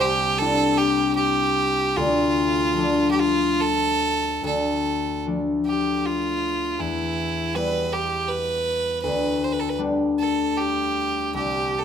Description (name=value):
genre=celtic folk, Celtic slow air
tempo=70-81 BPM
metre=3/4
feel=rubato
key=D dorian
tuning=A4 = 440 Hz
part: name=bright fiddle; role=melody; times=0.0-11.8 s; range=E4 to C5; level=-23 LUFS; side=right 4 dB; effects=none
part: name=concert harp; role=accompaniment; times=0.0-11.8 s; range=C2 to G4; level=-23 LUFS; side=left 4 dB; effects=none
room=light reverb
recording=close, detailed microphones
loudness=-20 LUFS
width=side -8 dB against mid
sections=0.0-4.4 A section; 4.4-11.8 A section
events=none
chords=0.0 Cadd9; 2.0 Dm; 6.8 Em; 9.0 G/D; 11.3 C5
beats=0.41 1.19 | 1.97 2.77 3.60 | 4.45 5.26 6.04 | 6.80 7.56 8.29 | 9.03 9.79 10.56 | 11.33